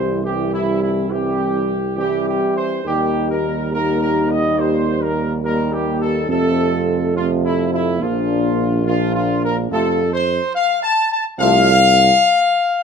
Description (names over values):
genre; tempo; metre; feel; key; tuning
classical; 70 BPM; 4/4; straight; F major; A4 = 440 Hz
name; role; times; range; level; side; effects
warm trumpet section; melody; 0.0-12.8 s; E4 to A5; -18 LUFS; left 2 dB; none
dark French horn section; sustained chords; 0.0-11.7 s; A3 to G4; -23 LUFS; left 7 dB; none
warm trombone section; sustained chords; 0.0-11.7 s; Bb2 to G3; -24 LUFS; right 3 dB; none
warm tuba; bass; 0.0-12.1 s; Bb1 to F2; -20 LUFS; right 5 dB; none
room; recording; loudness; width
moderate large studio reverb, RT60 0.9 s; none; -15 LUFS; side -6 dB against mid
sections
0.0-12.8 A section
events
none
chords
0.0 C; 2.8 Eb; 6.3 F; 8.0 Bb; 9.7 F